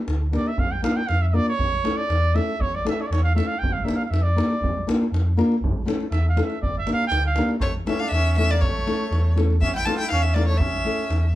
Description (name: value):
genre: balkan folk, Balkan wedding band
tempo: 120 BPM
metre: 2/4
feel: straight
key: unclear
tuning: A4 = 440 Hz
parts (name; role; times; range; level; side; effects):
- sub bass with octave; bass; 0.1-11.4 s; G1 to F2; -22 LUFS; equal; none
- davul; percussion; 0.1-11.3 s; none; -28 LUFS; equal; none
- nylon-string guitar; accompaniment; 0.3-11.0 s; A3 to Bb4; -25 LUFS; left 2 dB; none
- clear trumpet; second line; 0.4-11.4 s; A3 to G5; -27 LUFS; right 3 dB; none
- warm violin; melody; 7.6-11.3 s; C#5 to A5; -26 LUFS; left 1 dB; none
room: moderate studio reverb, RT60 0.6 s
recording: band playing live in one room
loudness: -20 LUFS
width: side -15 dB against mid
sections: 0.0-7.6 A section; 7.6-11.4 B section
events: trumpet solo 0.0-7.6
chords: 0.0 Gm; 0.6 Bb; 1.6 A; 3.6 Gm; 4.6 Bb; 5.6 A; 6.6 Gm; 7.6 A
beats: 0.07 | 0.58 1.09 | 1.59 2.10 | 2.60 3.11 | 3.61 4.12 | 4.62 5.12 | 5.62 6.13 | 6.63 7.13 | 7.63 8.12 | 8.62 9.12 | 9.62 10.11 | 10.61 11.10